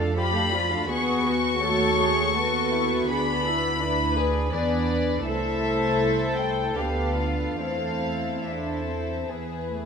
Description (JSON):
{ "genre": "classical, slow romantic movement for string orchestra", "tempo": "69-83 BPM", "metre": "3/4", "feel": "rubato", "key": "A minor", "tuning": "A4 = 441 Hz", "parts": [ { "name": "warm studio violin section", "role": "second line", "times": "0.0-9.9 s", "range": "F4 to F5", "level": "-30 LUFS", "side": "left 1 dB", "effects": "none" }, { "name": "dark studio viola section", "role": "accompaniment", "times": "0.0-9.9 s", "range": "F3 to G#4", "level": "-28 LUFS", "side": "equal", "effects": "none" }, { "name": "dark symphonic double bass section", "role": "bass", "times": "0.0-9.9 s", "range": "C2 to F2", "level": "-30 LUFS", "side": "right 3 dB", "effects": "none" }, { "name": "warm studio cello section", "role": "bass", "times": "0.0-9.7 s", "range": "D4 to B4", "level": "-31 LUFS", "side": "right 1 dB", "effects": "none" }, { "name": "rich studio violin section", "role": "melody", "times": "0.2-9.7 s", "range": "B4 to C#6", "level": "-27 LUFS", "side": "left 4 dB", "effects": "none" } ], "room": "moderate scoring stage reverb, RT60 1.8 s", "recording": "minimal, uncompressed stereo recording", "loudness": "-22 LUFS", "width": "side -6 dB against mid", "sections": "0.0-9.9 A section", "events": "none", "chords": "0.0 Dm/F; 0.9 B7/D#; 3.1 E7/D; 5.3 Am/C; 6.8 Bm7b5/D; 7.6 Am/E; 9.3 E", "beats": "0.16 | 0.89 1.61 2.35 | 3.08 3.81 4.53 | 5.26 5.99 6.76 | 7.60 8.45 9.29" }